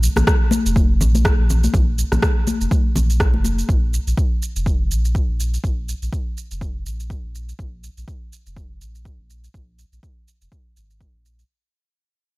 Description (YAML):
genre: afro house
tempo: 123 BPM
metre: 4/4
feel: swing 56% on 16ths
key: unclear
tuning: A4 = 440 Hz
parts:
  - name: warm sub bass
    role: bass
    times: 0.0-11.4 s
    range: F1 to Bb1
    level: -20 LUFS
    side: equal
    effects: sidechain pumping
  - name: electronic shaker and rim click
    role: drums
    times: 0.0-11.5 s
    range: none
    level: -26 LUFS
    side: right 1 dB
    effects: overdrive
  - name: congas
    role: percussion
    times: 0.2-3.6 s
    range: none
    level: -24 LUFS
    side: left 2 dB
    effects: none
  - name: electronic kick drum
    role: drums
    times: 0.3-11.1 s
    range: none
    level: -20 LUFS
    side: equal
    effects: overdrive
room: little or no reverb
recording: none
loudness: -17 LUFS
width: side -21 dB against mid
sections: 0.0-11.5 A section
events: fade-out 0.0-11.5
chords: none